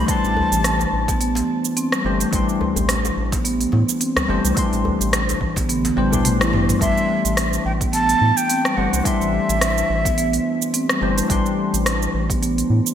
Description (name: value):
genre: organic downtempo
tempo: 107 BPM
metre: 4/4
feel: swing 56% on 16ths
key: A minor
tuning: A4 = 440 Hz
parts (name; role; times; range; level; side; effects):
- breathy bright bansuri; melody; 0.0-1.2, 6.8-11.0 s; E5 to A5; -22 LUFS; right 1 dB; ping-pong delay
- bell-like tine electric piano; accompaniment; 0.0-12.9 s; E3 to C6; -25 LUFS; left 3 dB; analog chorus, sidechain pumping, ping-pong delay
- marimba with soft mallets; arpeggios; 0.0-12.6 s; G3 to E4; -23 LUFS; left 1 dB; ping-pong delay
- round analog bass; bass; 0.0-12.8 s; G1 to A2; -23 LUFS; equal; sidechain pumping
- deep house drum kit; drums; 0.1-12.9 s; hi-hat, rim click, shaker, toms; -23 LUFS; right 1 dB; gated reverb
- electronic kick drum; drums; 0.1-12.4 s; none; -24 LUFS; equal; none
- djembe; percussion; 0.4-6.7 s; none; -32 LUFS; equal; none
room: moderate plate reverb, RT60 2.2 s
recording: bright 1980s-style digital production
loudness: -17 LUFS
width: side -9 dB against mid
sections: 0.0-6.8 A section; 6.8-12.9 A section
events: drum fill 5.7-6.8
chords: 0.0 Am9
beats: | 0.08 0.65 1.21 1.77 | 2.33 2.89 3.45 4.01 | 4.57 5.13 5.69 6.25 | 6.81 7.37 7.93 8.50 | 9.06 9.62 10.18 10.74 | 11.30 11.86 12.42